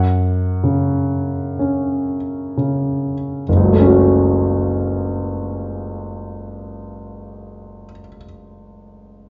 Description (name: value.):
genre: classical, romantic nocturne for solo piano.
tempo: 30-36 BPM.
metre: 4/4.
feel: rubato.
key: F# minor.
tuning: A4 = 440 Hz.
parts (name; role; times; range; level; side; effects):
warm concert grand piano; solo; 0.0-9.3 s; F#1 to F#5; -19 LUFS; equal; none.
room: moderate recital hall reverb, RT60 1.6 s.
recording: worn, warbling old tape, cassette tape, warbly pitch drift, nothing above 7.6 kHz.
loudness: -18 LUFS.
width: mono.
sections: 0.0-3.5 A section; 3.5-9.3 B section.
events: none.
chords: 0.0 F#5; 3.5 F#m.